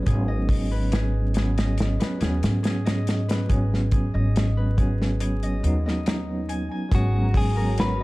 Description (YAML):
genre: trip hop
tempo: 70 BPM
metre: 4/4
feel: straight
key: G# minor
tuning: A4 = 439 Hz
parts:
  - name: bell-like tine electric piano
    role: accompaniment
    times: 0.0-8.0 s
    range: F#3 to D#4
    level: -28 LUFS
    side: right 1 dB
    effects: tremolo, tape echo
  - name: concert harp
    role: arpeggios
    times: 0.0-8.0 s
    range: D#4 to G#5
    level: -35 LUFS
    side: left 2 dB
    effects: tape echo
  - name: upright bass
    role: bass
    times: 0.0-8.0 s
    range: G#1 to G#2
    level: -24 LUFS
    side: equal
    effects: tube saturation
  - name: natural country drum kit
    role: drums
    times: 0.1-8.0 s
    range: hi-hat, kick drum, snare drum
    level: -25 LUFS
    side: equal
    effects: none
  - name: clean electric guitar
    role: melody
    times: 6.9-8.0 s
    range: F#4 to B4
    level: -29 LUFS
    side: left 2 dB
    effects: none
  - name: string machine, cellos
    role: sustained chords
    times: 6.9-8.0 s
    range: F#4 to A#5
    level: -35 LUFS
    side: equal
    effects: ensemble chorus, vintage 12-bit sampler grit
room: studio ambience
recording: dark, warm production, vinyl crackle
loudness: -21 LUFS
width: side -20 dB against mid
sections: 0.0-6.9 A section; 6.9-8.0 B section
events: break 5.2-6.9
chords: 0.0 G#m11